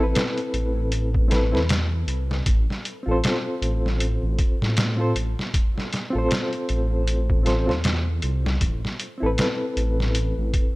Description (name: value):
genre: trip hop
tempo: 78 BPM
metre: 4/4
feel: swing 58% on 16ths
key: unclear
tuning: A4 = 440 Hz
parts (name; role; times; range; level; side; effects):
- reed electric piano; accompaniment; 0.0-10.8 s; C4 to C5; -26 LUFS; equal; fast tremolo, tape echo
- dark detuned saw bass; bass; 0.0-10.5 s; A1 to A2; -23 LUFS; equal; none
- trip hop sampler-style drum kit; drums; 0.2-10.7 s; hi-hat, kick drum, snare drum; -24 LUFS; equal; none
room: digital ambience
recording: none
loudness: -21 LUFS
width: side -21 dB against mid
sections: 0.0-10.8 A section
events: none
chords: 0.0 Amadd9; 2.5 F/A; 8.6 Amadd9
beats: 0.15 0.92 1.69 | 2.46 3.23 4.00 4.77 | 5.54 6.30 7.07 7.84 | 8.61 9.38 10.15